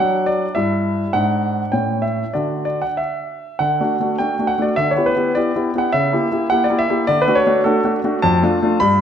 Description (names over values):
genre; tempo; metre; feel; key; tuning
classical-period piano sonatina; 103 BPM; 2/4; rubato; D major; A4 = 445 Hz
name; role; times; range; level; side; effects
warm concert grand piano; solo; 0.0-9.0 s; F2 to B5; -16 LUFS; equal; none
room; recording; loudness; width
wet recital hall reverb, RT60 1.7 s; none; -16 LUFS; side -8 dB against mid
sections
0.0-3.6 A section; 3.6-9.0 A section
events
none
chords
0.0 D/F#; 0.6 Em/G; 1.1 D; 1.7 A7; 2.3 D; 4.8 Em7/D; 5.9 C#dim7; 7.1 D; 8.2 Dm/F